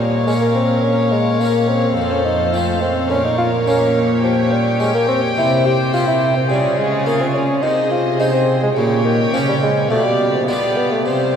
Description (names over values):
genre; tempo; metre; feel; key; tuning
classical, baroque-style concerto movement with solo episodes; 106 BPM; 4/4; straight; unclear; A4 = 440 Hz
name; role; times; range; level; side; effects
mellow bassoon; melody; 0.0-11.4 s; Db3 to G4; -18 LUFS; equal; none
rich chamber violin section; melody; 0.0-11.4 s; Db5 to G5; -27 LUFS; left 4 dB; none
warm chamber violin section; second line; 0.0-11.4 s; Ab4 to D5; -24 LUFS; left 3 dB; none
dark chamber viola section; accompaniment; 0.0-11.4 s; F4 to Bb4; -24 LUFS; right 1 dB; none
harpsichord; accompaniment; 0.0-11.4 s; F2 to G4; -26 LUFS; right 1 dB; none
rich chamber cello section; bass; 0.0-11.4 s; F2 to B3; -20 LUFS; right 1 dB; none
room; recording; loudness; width
wet cathedral reverb, RT60 6.7 s; recorded in a church or concert hall; -14 LUFS; side -8 dB against mid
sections
0.0-11.4 A section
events
none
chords
0.0 Bbm; 2.0 F; 3.1 Bbm; 4.2 Gdim/Bb; 5.4 C; 6.5 Db; 7.6 Ab/C; 8.8 Gdim/Bb; 9.9 G7/B